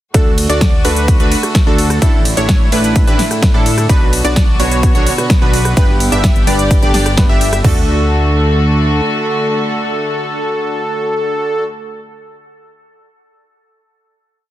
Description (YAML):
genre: EDM, festival progressive house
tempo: 128 BPM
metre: 4/4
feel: straight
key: D major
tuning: A4 = 440 Hz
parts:
  - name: warm grand piano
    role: accompaniment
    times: 0.1-11.7 s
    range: G2 to B4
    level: -22 LUFS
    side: right 3 dB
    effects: vintage 12-bit sampler grit, sidechain pumping, dub echo
  - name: warm studio string section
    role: sustained chords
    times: 0.1-11.6 s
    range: D3 to G4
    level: -21 LUFS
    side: left 1 dB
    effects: sidechain pumping
  - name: plucky unison lead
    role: arpeggios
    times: 0.1-11.6 s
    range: A4 to E5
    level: -21 LUFS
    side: left 1 dB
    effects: sidechain pumping, dub echo
  - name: supersaw stab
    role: riff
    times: 0.1-11.6 s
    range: D4 to E5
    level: -21 LUFS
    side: equal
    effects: sidechain pumping, dub echo
  - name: fat analog bass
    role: bass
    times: 0.1-9.0 s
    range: G1 to A2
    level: -16 LUFS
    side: equal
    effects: sidechain pumping
  - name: big-room dance drum kit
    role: drums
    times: 0.1-7.8 s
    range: crash cymbal, kick drum, toms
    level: -12 LUFS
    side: equal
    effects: overdrive
  - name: big-room dance drum kit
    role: drums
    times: 0.1-7.6 s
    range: hi-hat, ride cymbal, rim click, snare drum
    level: -19 LUFS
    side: equal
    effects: overdrive
room: digital ambience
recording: dense, heavily limited modern master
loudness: -10 LUFS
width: side -14 dB against mid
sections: 0.1-7.6 drop; 7.6-11.4 final chord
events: drop 0.1-7.6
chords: 0.1 D; 2.0 Asus4; 3.9 Bm; 5.8 G; 7.6 D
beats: | 0.14 0.61 1.08 1.55 | 2.02 2.49 2.96 3.43 | 3.90 4.36 4.83 5.30 | 5.77 6.24 6.71 7.18 | 7.64 8.11 8.58 9.05 | 9.52 9.99 10.46 10.93